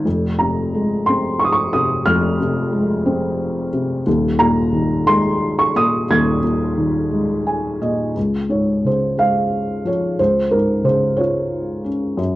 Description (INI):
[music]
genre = classical, lyrical solo piano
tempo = 60 BPM (dotted quarters)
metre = 6/8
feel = rubato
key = unclear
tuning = A4 = 441 Hz
[part]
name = felt-muted upright piano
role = solo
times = 0.0-12.4 s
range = Eb1 to Ab6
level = -16 LUFS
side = equal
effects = none
[sound]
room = light reverb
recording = worn, warbling old tape, cassette tape, warbly pitch drift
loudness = -16 LUFS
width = side -16 dB against mid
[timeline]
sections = 0.0-8.2 A section; 8.2-12.4 B section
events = felt piano fill 7.1-8.2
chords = 0.1 Fm; 4.1 Ebsus4; 8.2 Db